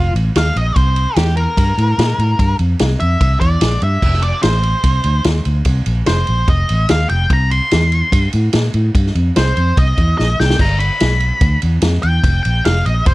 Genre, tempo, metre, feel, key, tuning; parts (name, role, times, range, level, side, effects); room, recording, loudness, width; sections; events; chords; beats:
blues rock power trio and southern rock; 146 BPM; 4/4; straight; C mixolydian; A4 = 439 Hz
octave-fuzz lead guitar; melody; 0.0-13.1 s; F4 to C6; -19 LUFS; equal; distortion
vintage muted fingered electric bass; bass; 0.0-13.1 s; F1 to Bb2; -15 LUFS; equal
vintage drum kit; drums; 0.2-13.1 s; crash cymbal, kick drum, ride cymbal, snare drum; -18 LUFS; equal
studio reverb; dry, close 1970s-style studio recording; -12 LUFS; side -19 dB against mid
0.0-13.1 A section
lead electric guitar solo 0.0-13.1; drum fill 10.2-10.6
0.0 F7; 0.8 C7; 4.0 F7; 7.3 C7; 10.6 G7; 12.2 F7(no3)
0.36 | 0.76 1.17 1.58 1.98 | 2.39 2.80 3.21 3.62 | 4.03 4.43 4.84 5.25 | 5.66 6.07 6.48 6.89 | 7.30 7.71 8.12 8.54 | 8.95 9.36 9.77 10.18 | 10.60 11.01 11.42 11.83 | 12.25 12.66 13.07